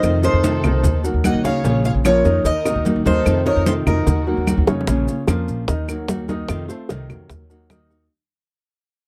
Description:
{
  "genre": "latin, Cuban son and guajira",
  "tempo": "149 BPM",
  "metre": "4/4",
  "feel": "straight",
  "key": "unclear",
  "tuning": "A4 = 439 Hz",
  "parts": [
    { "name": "Cuban tres", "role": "melody", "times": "0.0-4.6 s", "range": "Bb4 to Gb5", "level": "-24 LUFS", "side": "equal", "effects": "none" },
    { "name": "rich studio violin section", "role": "second line", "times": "0.0-4.6 s", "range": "Gb4 to Eb5", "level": "-34 LUFS", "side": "equal", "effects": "none" },
    { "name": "nylon-string guitar", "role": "accompaniment", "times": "0.0-8.1 s", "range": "C3 to Gb4", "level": "-26 LUFS", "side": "equal", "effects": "none" },
    { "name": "warm baby grand piano", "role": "arpeggios", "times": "0.0-8.0 s", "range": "Db3 to Eb5", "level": "-27 LUFS", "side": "equal", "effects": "none" },
    { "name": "upright bass", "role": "bass", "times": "0.0-8.1 s", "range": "Bb1 to F2", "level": "-23 LUFS", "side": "equal", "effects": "none" },
    { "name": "claves", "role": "percussion", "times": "0.0-7.9 s", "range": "none", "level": "-32 LUFS", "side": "equal", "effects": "none" },
    { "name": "congas", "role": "percussion", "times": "0.0-7.9 s", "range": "none", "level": "-26 LUFS", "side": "equal", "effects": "none" },
    { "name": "cowbell and bongos", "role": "percussion", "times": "0.0-8.1 s", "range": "none", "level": "-27 LUFS", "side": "equal", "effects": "none" },
    { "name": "maracas", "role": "percussion", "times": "0.0-8.1 s", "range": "none", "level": "-39 LUFS", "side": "equal", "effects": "none" }
  ],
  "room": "little or no reverb",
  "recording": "dry, close 1970s-style studio recording",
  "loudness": "-19 LUFS",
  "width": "mono",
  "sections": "0.0-4.9 A section; 4.9-8.1 B section",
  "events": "drum fill 4.7; fade-out 4.9-8.1",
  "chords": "0.0 F7; 0.8 Ebm; 1.6 Bbm; 2.5 Ebm; 3.3 F7; 4.1 Ebm; 4.9 Bbm; 5.7 Ebm; 6.5 F7; 7.3 Ebm",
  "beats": "| 0.03 0.44 0.84 1.24 | 1.65 2.05 2.45 2.86 | 3.26 3.66 4.07 4.47 | 4.88 5.28 5.68 6.09 | 6.49 6.90 7.30 7.71"
}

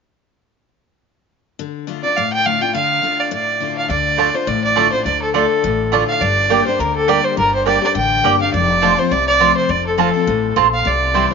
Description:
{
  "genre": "bluegrass",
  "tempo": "207 BPM",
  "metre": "4/4",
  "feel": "swing 56% on 8ths",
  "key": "D minor",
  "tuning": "A4 = 440 Hz",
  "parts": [
    { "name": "picked steel-string acoustic guitar", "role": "accompaniment", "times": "1.6-11.3 s", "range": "F2 to G4", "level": "-22 LUFS", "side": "left 12 dB", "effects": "none" },
    { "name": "rich fiddle", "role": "melody", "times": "2.0-11.3 s", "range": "A4 to G5", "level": "-16 LUFS", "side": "right 1 dB", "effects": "none" },
    { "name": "upright bass", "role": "bass", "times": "3.9-11.2 s", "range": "F1 to D2", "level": "-24 LUFS", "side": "left 1 dB", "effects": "none" },
    { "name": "mandolin", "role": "stabs", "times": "4.2-11.3 s", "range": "A3 to A5", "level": "-19 LUFS", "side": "right 9 dB", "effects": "none" }
  ],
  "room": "moderate plate reverb, RT60 3.5 s",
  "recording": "1960s-style stereo with parts hard left and right, nothing above 7.5 kHz",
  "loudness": "-14 LUFS",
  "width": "side -5 dB against mid",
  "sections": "1.6-3.9 A section; 3.9-11.3 B section",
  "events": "none",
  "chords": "1.6 Dm; 6.2 Gm; 8.5 F",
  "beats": "| 1.58 1.87 2.16 2.45 | 2.74 3.03 3.32 3.61 | 3.90 4.19 4.48 4.77 | 5.06 5.35 5.64 5.93 | 6.22 6.50 6.79 7.08 | 7.38 7.67 7.96 8.24 | 8.54 8.83 9.12 9.41 | 9.70 9.99 10.28 10.57 | 10.86 11.15"
}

